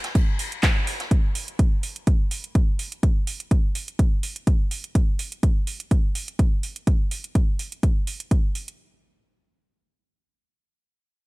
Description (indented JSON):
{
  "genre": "piano house",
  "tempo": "125 BPM",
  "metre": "4/4",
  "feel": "swing 54% on 16ths",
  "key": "none",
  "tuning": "none",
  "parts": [
    { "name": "house drum kit", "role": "drums", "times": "0.0-8.8 s", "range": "handclaps, hi-hat", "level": "-30 LUFS", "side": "right 2 dB", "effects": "none" },
    { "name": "jazz brush drum kit", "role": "drums", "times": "0.0-1.1 s", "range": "ride cymbal, snare drum", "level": "-33 LUFS", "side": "left 2 dB", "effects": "sidechain pumping on cymbals, high-pass filter on cymbals, sidechain pumping on hats, high-pass filter on hats, high-pass filter on snare, high-pass filter on room" },
    { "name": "electronic kick drum", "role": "drums", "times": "0.2-8.4 s", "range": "none", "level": "-20 LUFS", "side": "equal", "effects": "none" }
  ],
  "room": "little or no reverb",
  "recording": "none",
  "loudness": "-21 LUFS",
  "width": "side -22 dB against mid",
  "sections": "0.0-8.8 A section; 8.8-11.3 B section",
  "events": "none",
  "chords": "none"
}